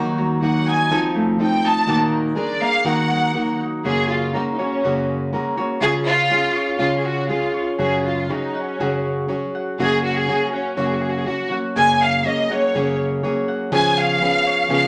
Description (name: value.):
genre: mexican folk, mariachi.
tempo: 122 BPM.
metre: 2/4.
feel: rubato.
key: Eb minor, F# major from 3.9 s.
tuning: A4 = 441 Hz.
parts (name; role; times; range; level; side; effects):
nylon-string guitar; accompaniment; 0.0-14.9 s; F#2 to Bb4; -24 LUFS; equal; none.
Celtic harp; arpeggios; 0.0-14.9 s; Bb2 to F#5; -30 LUFS; equal; none.
warm studio violin section; melody; 0.4-14.9 s; C#4 to A5; -22 LUFS; equal; none.
room: wet studio reverb, RT60 0.8 s.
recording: none.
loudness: -20 LUFS.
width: mono.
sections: 0.0-3.9 A section; 3.9-11.8 B section; 11.8-14.9 B section.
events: none.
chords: 0.0 Ebm; 0.9 F7; 1.9 Ebm/Bb; 2.4 Bb7; 2.9 Ebm; 3.9 F#add9; 5.8 C#; 7.8 F#sus2; 9.8 F#; 11.8 F#add9; 13.7 C#7.